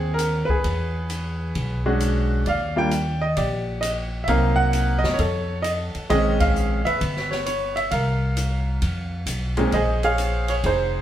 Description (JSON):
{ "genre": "jazz piano trio", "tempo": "132 BPM", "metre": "4/4", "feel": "swing 67% on 8ths", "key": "unclear", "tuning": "A4 = 440 Hz", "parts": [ { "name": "bright upright piano", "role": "melody", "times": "0.0-11.0 s", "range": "Bb2 to G5", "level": "-23 LUFS", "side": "right 1 dB", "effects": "none" }, { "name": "upright bass", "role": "bass", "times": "0.0-11.0 s", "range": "F1 to Gb2", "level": "-24 LUFS", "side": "equal", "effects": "none" }, { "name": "open jazz drum kit", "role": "drums", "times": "0.2-10.8 s", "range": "hi-hat, kick drum, ride cymbal, snare drum", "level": "-31 LUFS", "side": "left 1 dB", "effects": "none" } ], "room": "wet studio reverb, RT60 0.8 s", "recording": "heard from further back in the room", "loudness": "-20 LUFS", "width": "side -11 dB against mid", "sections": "0.0-9.7 A section; 9.7-11.0 A section", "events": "band accent 6.3", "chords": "0.0 Ab; 0.6 E13; 2.5 Ebmaj7; 4.3 Cm7b5; 5.2 F; 6.1 Bbm11; 7.0 G; 7.9 C7sus4; 8.8 F5; 9.7 Bbm11", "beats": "0.19 | 0.64 1.10 1.55 2.00 | 2.46 2.91 3.37 3.82 | 4.28 4.73 5.18 5.64 | 6.09 6.55 7.00 7.46 | 7.91 8.36 8.82 9.27 | 9.72 10.18 10.63" }